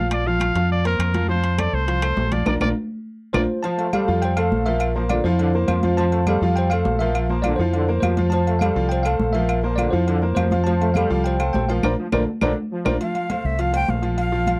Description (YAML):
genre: latin, salsa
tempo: 205 BPM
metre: 4/4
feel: straight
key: F major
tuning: A4 = 442 Hz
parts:
  - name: clear trumpet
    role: melody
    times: 0.0-3.4 s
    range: Bb4 to F5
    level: -27 LUFS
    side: equal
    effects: none
  - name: clear baby grand piano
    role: accompaniment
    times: 0.0-14.6 s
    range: F3 to F5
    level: -28 LUFS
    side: equal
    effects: none
  - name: deep dub fingered electric bass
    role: bass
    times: 0.0-14.6 s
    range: Bb1 to F2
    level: -25 LUFS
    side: equal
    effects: none
  - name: claves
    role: percussion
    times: 0.1-12.9 s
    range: none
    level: -34 LUFS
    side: equal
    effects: none
  - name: congas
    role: percussion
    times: 0.1-14.6 s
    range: none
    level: -31 LUFS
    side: equal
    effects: none
  - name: timbales and agogo bells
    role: percussion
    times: 0.1-14.6 s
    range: none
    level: -33 LUFS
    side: equal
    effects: none
  - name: bell-like tine electric piano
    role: melody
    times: 3.3-13.0 s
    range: E4 to A5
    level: -26 LUFS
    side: equal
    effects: none
  - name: mellow trombone section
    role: second line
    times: 3.6-12.9 s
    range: D3 to A3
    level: -31 LUFS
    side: equal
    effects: none
  - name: breathy bright jazz flute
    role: melody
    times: 13.0-14.6 s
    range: E5 to G5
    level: -28 LUFS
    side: equal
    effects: none
room: little or no reverb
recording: dry, close 1970s-style studio recording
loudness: -21 LUFS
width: mono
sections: 0.0-3.6 A section; 3.6-13.0 B section; 13.0-14.6 C section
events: drum fill 2.5-3.6; band accent 2.5-3.6, 11.8-13.0; flute solo 13.0-14.6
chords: 0.1 Bbsus2; 1.3 F; 2.5 Bbadd9; 3.6 Fadd9; 4.8 Bbadd9; 6.0 Fadd9; 7.2 Bbadd9; 8.3 Fadd9; 9.5 Bbadd9; 10.7 Fadd9; 11.8 Bbadd9; 13.0 F